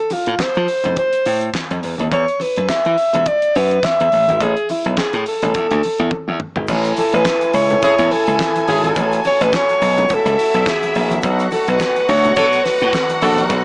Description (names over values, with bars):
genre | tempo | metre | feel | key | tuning
disco | 105 BPM | 4/4 | swing 56% on 16ths | A major | A4 = 444 Hz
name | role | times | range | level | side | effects
breathy alto saxophone | melody | 0.0-13.2 s | E4 to E5 | -16 LUFS | equal | none
damped 70s drum kit | drums | 0.1-13.6 s | crash cymbal, handclaps, hi-hat, kick drum, snare drum, toms | -25 LUFS | equal | none
congas | percussion | 0.1-13.6 s | none | -29 LUFS | left 1 dB | none
glassy slap bass | bass | 0.3-13.6 s | G#1 to F3 | -18 LUFS | equal | none
clear studio string section | second line | 6.7-13.6 s | E4 to G#5 | -22 LUFS | equal | none
clear French horn section | sustained chords | 6.7-13.6 s | C#3 to F#4 | -24 LUFS | equal | none
tube shaker | percussion | 6.7-13.6 s | none | -44 LUFS | right 2 dB | none
warm horn section | stabs | 7.8-13.6 s | C#4 to A4 | -20 LUFS | equal | none
room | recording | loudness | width
light reverb | small speaker sound | -14 LUFS | side -27 dB against mid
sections
0.0-6.7 A section; 6.7-13.6 B section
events
drum fill 6.1-6.7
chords
0.0 F; 1.8 Esus2; 4.1 A5; 5.5 E7sus4; 6.7 Amaj7; 11.2 Bm7